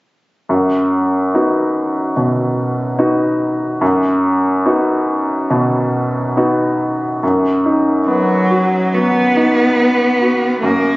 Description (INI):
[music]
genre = neoclassical piano and strings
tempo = 71 BPM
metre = 4/4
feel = rubato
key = unclear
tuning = A4 = 443 Hz
[part]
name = clear baby grand piano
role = accompaniment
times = 0.5-11.0 s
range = F#2 to F#4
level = -14 LUFS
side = equal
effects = none
[part]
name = clear cello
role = second line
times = 8.1-11.0 s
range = F#3 to B3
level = -13 LUFS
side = equal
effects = none
[sound]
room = moderate recital hall reverb, RT60 1.9 s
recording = recorded on a phone in the room, club reverb, nothing above 7.7 kHz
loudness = -13 LUFS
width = side -21 dB against mid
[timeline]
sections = 0.5-7.2 A section; 7.2-11.0 B section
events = none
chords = 0.5 B/F#